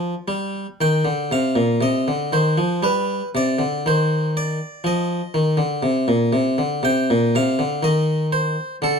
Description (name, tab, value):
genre	classical, baroque-style suite movement for harpsichord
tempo	59 BPM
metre	3/4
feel	rubato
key	C minor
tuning	A4 = 440 Hz
part	harpsichord	solo	0.0-9.0 s	Bb2 to G5	-18 LUFS	equal	none
room	moderate studio reverb, RT60 0.6 s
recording	dark, warm production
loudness	-18 LUFS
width	side -6 dB against mid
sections	0.0-9.0 A section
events	none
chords	0.0 G5; 0.8 Cm; 2.8 G; 3.9 Cm/Eb; 6.8 Cm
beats	| 0.79 1.82 2.84 | 3.87 4.85 5.83 | 6.84 7.83 8.82